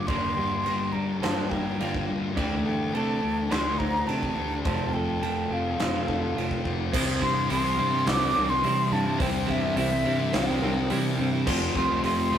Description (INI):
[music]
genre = rock, shoegaze and dream pop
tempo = 105 BPM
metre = 4/4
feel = straight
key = unclear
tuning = A4 = 440 Hz
[part]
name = breathy mellow silver concert flute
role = melody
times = 0.0-12.4 s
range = E5 to D6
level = -29 LUFS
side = equal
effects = none
[part]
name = direct-recorded clean electric guitar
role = arpeggios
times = 0.0-12.4 s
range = F4 to D5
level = -35 LUFS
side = right 4 dB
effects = none
[part]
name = crunchy overdriven guitar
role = riff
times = 0.0-12.4 s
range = F2 to F4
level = -31 LUFS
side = right 3 dB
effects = none
[part]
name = thick fuzz guitar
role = riff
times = 0.0-12.4 s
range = F2 to D4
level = -30 LUFS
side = left 5 dB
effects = distortion
[part]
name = growling fingered electric bass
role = bass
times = 0.0-12.4 s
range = F1 to C3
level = -34 LUFS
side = equal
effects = overdrive
[part]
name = huge arena drum kit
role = drums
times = 0.1-12.2 s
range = crash cymbal, hi-hat, kick drum, snare drum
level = -32 LUFS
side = equal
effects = none
[part]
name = sludgy distorted guitar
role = riff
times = 6.9-12.4 s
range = F2 to C4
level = -31 LUFS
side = equal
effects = overdrive
[sound]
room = wet studio reverb, RT60 0.6 s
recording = rough rehearsal-room recording, tube saturation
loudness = -23 LUFS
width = side -9 dB against mid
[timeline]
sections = 0.0-6.9 A section; 6.9-12.4 B section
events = none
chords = 0.0 Gm7; 2.4 Dsus2; 4.7 F; 6.9 C; 11.5 Fadd9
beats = | 0.09 0.66 1.23 1.80 | 2.38 2.95 3.52 4.09 | 4.66 5.23 5.80 6.37 | 6.94 7.51 8.07 8.64 | 9.21 9.78 10.34 10.91 | 11.47 12.04